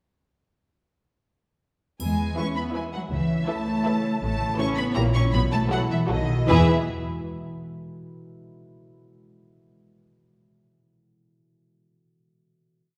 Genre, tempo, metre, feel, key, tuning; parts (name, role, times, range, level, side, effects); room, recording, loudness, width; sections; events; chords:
cinematic, playful, whimsical film cue; 161 BPM; 3/4; uneven beats; E major; A4 = 440 Hz
rich studio violin section; melody; 2.0-6.7 s; D#5 to C#6; -34 LUFS; equal
concert harp; arpeggios; 2.0-7.7 s; A2 to E5; -31 LUFS; equal
rich studio cello section; bass; 2.0-6.7 s; D#3 to C#4; -29 LUFS; equal
warm studio double bass section; bass; 2.0-6.7 s; A1 to E2; -30 LUFS; equal
triangle; percussion; 2.0-2.7 s; -49 LUFS; equal
clear studio violin section; second line; 2.4-6.7 s; F#4 to E5; -34 LUFS; equal
rich studio viola section; accompaniment; 2.4-6.7 s; E3 to F#4; -32 LUFS; equal
wet scoring stage reverb, RT60 1.7 s; heard from further back in the room; -24 LUFS; mono
2.0-6.5 A section; 6.5-7.6 final chord
2.0 E; 3.1 A/C#; 4.2 A; 5.0 A#dim7; 5.3 B7sus4; 6.1 B7; 6.5 E